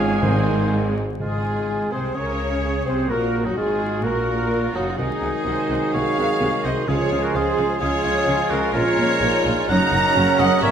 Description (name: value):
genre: classical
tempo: 127 BPM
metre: 4/4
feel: rubato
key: Db major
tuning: A4 = 440 Hz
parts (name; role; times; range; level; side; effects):
- rich symphonic violin section; melody; 0.0-10.7 s; Gb4 to Bb5; -34 LUFS; left 3 dB; none
- bright clarinet; second line; 0.0-10.7 s; Db4 to F5; -31 LUFS; equal; none
- rich symphonic violin section; second line; 0.0-10.7 s; Eb4 to Bb5; -27 LUFS; left 2 dB; none
- silver concert flute; second line; 0.0-10.7 s; Gb4 to Bb5; -31 LUFS; left 1 dB; none
- rich symphonic viola section; accompaniment; 0.0-10.7 s; Ab3 to C5; -28 LUFS; right 1 dB; none
- mellow French horn section; sustained chords; 0.0-10.7 s; Gb3 to F4; -31 LUFS; left 2 dB; none
- mellow trombone section; sustained chords; 0.0-10.7 s; Gb2 to Ab3; -29 LUFS; right 4 dB; none
- mellow trumpet section; stabs; 0.0-10.7 s; Gb4 to Db5; -29 LUFS; right 1 dB; none
- clear symphonic double bass section; bass; 0.0-10.7 s; Gb1 to Db2; -28 LUFS; right 2 dB; none
- rich symphonic cello section; bass; 0.0-10.7 s; Gb2 to Db3; -27 LUFS; right 1 dB; none
- warm oboe; second line; 0.2-10.7 s; Eb4 to Gb5; -27 LUFS; right 1 dB; none
- mellow bassoon; accompaniment; 0.2-10.7 s; Eb3 to Db4; -28 LUFS; right 2 dB; none
- timpani; percussion; 0.2-1.9, 6.9-7.5 s; Ab2 to Db3; -26 LUFS; left 1 dB; none
room: wet recital hall reverb, RT60 1.5 s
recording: minimal, uncompressed stereo recording, vinyl crackle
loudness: -18 LUFS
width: side -8 dB against mid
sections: 0.0-1.2 A section; 1.2-10.7 B section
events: none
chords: 0.2 Ab; 1.2 Db/Ab; 3.1 Gbmaj9; 5.0 Ab7/C; 6.9 Db; 8.8 Bbm7; 9.7 Gb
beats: 0.22 0.71 | 1.21 1.68 2.16 2.62 | 3.10 3.57 4.05 4.52 | 4.99 5.46 5.95 6.42 | 6.89 7.36 7.82 8.28 | 8.75 9.22 9.70 10.17 | 10.63